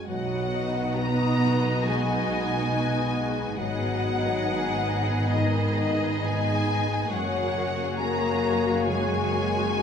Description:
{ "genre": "cinematic, emotional film score for orchestra", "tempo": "68 BPM", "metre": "4/4", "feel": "rubato", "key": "unclear", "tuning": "A4 = 440 Hz", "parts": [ { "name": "muted symphonic violin section", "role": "melody", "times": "0.0-9.8 s", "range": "D#5 to A#5", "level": "-31 LUFS", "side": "left 3 dB", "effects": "none" }, { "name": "dark French horn section", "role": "sustained chords", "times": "0.0-9.8 s", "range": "D#3 to B3", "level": "-29 LUFS", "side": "left 2 dB", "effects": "none" }, { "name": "concert harp", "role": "arpeggios", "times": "0.0-9.8 s", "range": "F#2 to D#6", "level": "-34 LUFS", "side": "left 6 dB", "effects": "none" }, { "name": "muted symphonic violin section", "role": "second line", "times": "0.1-9.8 s", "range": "F#4 to D#5", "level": "-32 LUFS", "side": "left 3 dB", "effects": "none" }, { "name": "muted studio viola section", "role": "accompaniment", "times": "0.1-9.8 s", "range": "A#3 to F#4", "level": "-32 LUFS", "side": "right 3 dB", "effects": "none" }, { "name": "muted symphonic cello section", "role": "bass", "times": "0.1-9.8 s", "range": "F#2 to B2", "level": "-30 LUFS", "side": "right 2 dB", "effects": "none" }, { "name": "muted symphonic double bass section", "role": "bass", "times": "0.1-9.8 s", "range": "F#1 to B1", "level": "-33 LUFS", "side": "right 4 dB", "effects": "none" } ], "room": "wet recital hall reverb, RT60 1.3 s", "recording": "none", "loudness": "-23 LUFS", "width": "side -7 dB against mid", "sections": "0.1-9.8 A section", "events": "none", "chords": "0.1 B; 3.6 G#m7; 7.1 F#add9" }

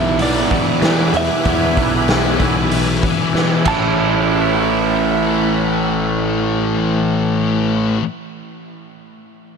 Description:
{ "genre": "rock, shoegaze and dream pop", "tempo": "95 BPM", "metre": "4/4", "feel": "straight", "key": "A major", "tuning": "A4 = 440 Hz", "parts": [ { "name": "direct-recorded clean electric guitar", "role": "melody", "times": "0.0-8.0 s", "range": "D5 to A5", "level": "-25 LUFS", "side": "right 3 dB", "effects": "slapback echo" }, { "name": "evolving wavetable pad", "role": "sustained chords", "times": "0.0-7.3 s", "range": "C#4 to D6", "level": "-24 LUFS", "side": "right 1 dB", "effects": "phaser, built-in reverb" }, { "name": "raw garage guitar", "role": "riff", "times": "0.0-8.0 s", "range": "E2 to E4", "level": "-20 LUFS", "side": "right 11 dB", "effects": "overdrive, reverse reverb" }, { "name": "thick fuzz guitar", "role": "riff", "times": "0.0-8.0 s", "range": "E2 to A3", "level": "-20 LUFS", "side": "left 10 dB", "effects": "distortion, ensemble chorus" }, { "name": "fuzz fingered electric bass", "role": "bass", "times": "0.0-8.0 s", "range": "A1 to E3", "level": "-21 LUFS", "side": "equal", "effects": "overdrive" }, { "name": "raw garage drum kit", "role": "drums", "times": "0.2-3.8 s", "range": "crash cymbal, hi-hat, kick drum, snare drum", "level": "-21 LUFS", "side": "equal", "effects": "none" } ], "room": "light reverb", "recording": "none", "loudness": "-14 LUFS", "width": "side -6 dB against mid", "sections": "0.0-4.0 A section; 4.0-6.5 B section", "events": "drum fill 3.4-4.0", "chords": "0.0 E7; 3.7 A6" }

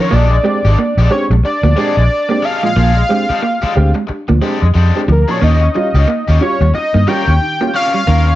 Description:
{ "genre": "funk", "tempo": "91 BPM", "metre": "4/4", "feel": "swing 60% on 16ths", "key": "Bb mixolydian", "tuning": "A4 = 441 Hz", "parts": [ { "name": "fat analog lead", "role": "melody", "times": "0.0-8.4 s", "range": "Bb4 to G5", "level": "-16 LUFS", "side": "equal", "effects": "chorus" }, { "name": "overdriven electric guitar", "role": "accompaniment", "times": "0.0-8.3 s", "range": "Ab3 to Bb4", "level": "-22 LUFS", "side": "left 4 dB", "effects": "none" }, { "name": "clean electric guitar", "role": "riff", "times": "0.0-8.2 s", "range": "F3 to Bb3", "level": "-20 LUFS", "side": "right 5 dB", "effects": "none" }, { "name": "dark upright piano", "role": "stabs", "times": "0.0-8.2 s", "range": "Bb2 to G4", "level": "-21 LUFS", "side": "right 1 dB", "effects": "none" }, { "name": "vintage muted fingered electric bass", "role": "bass", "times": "0.1-8.3 s", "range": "Ab1 to G2", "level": "-11 LUFS", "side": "equal", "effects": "none" } ], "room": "light reverb", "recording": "dark, warm production, nothing above 7.9 kHz", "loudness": "-11 LUFS", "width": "side -15 dB against mid", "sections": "0.0-8.4 A section", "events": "none", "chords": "0.1 Bb13; 5.4 Eb9" }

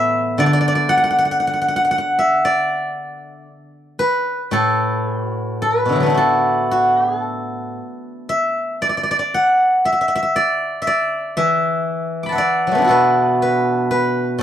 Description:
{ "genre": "chinese traditional, Chinese solo plucked strings", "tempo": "59 BPM", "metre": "4/4", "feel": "rubato", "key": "D gong mode", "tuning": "A4 = 439 Hz", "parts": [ { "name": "steel-string zither", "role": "solo", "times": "0.0-14.4 s", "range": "A2 to D6", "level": "-16 LUFS", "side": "equal", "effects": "none" } ], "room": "studio reverb", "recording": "dry, close 1970s-style studio recording", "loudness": "-15 LUFS", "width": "side -10 dB against mid", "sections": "0.0-14.4 A section", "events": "none", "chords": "none" }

